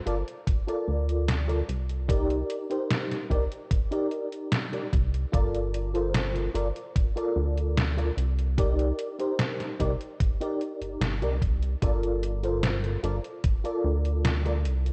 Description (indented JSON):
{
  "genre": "vaporwave",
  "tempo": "74 BPM",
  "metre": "4/4",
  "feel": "straight",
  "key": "G minor",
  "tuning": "A4 = 437 Hz",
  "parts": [
    { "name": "mellow FM electric piano", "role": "accompaniment", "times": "0.0-14.6 s", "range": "Eb4 to D5", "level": "-33 LUFS", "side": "equal", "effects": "ensemble chorus, tape echo" },
    { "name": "chorused synth bass", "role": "bass", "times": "0.1-14.9 s", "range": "G1 to D2", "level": "-30 LUFS", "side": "equal", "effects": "tube saturation" },
    { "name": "detuned 8-bit digital drum machine", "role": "drums", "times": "0.1-14.9 s", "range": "hi-hat, snare drum", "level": "-32 LUFS", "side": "equal", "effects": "vintage 12-bit sampler grit, studio reverb, gated reverb" },
    { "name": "electronic kick drum", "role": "drums", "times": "0.5-13.6 s", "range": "none", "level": "-28 LUFS", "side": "equal", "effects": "vintage 12-bit sampler grit, studio reverb" }
  ],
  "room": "light reverb, digital ambience",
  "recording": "cassette tape",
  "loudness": "-28 LUFS",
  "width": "mono",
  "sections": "0.0-14.9 A section",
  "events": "none",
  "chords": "0.0 Gm7 (rootless); 1.7 Cm7; 5.3 Gm7; 8.2 Cm7; 11.8 Gm7"
}